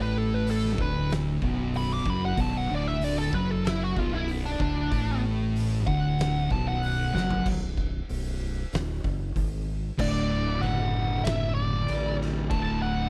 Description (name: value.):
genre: stoner and doom metal.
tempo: 95 BPM.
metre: 4/4.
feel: straight.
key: B minor.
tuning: A4 = 439 Hz.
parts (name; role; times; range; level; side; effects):
fuzz lead guitar; melody; 0.0-13.1 s; D4 to D6; -34 LUFS; equal; wah, distortion, slapback echo.
thick fuzz guitar; riff; 0.0-13.1 s; B1 to A3; -33 LUFS; equal; distortion.
thick fuzz guitar; riff; 0.0-13.1 s; B1 to A3; -34 LUFS; equal; distortion.
growling fingered electric bass; bass; 0.0-13.1 s; B0 to A1; -33 LUFS; equal; overdrive.
oversized low-tuned drum kit; drums; 0.5-12.7 s; crash cymbal, hi-hat, kick drum, snare drum, toms; -36 LUFS; equal; none.
room: small room reverb.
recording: faint mains hum.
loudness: -27 LUFS.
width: mono.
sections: 0.0-7.5 A section; 7.5-10.0 B section; 10.0-13.1 C section.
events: lead electric guitar solo 0.0-7.5; drum fill 7.1-7.5.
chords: 0.0 Bm; 7.5 N.C.; 10.0 D.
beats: 0.47 1.10 1.74 | 2.38 3.02 3.65 4.29 | 4.92 5.56 6.19 6.83 | 7.46 8.09 8.73 9.36 | 9.99 10.62 11.25 11.88 | 12.52.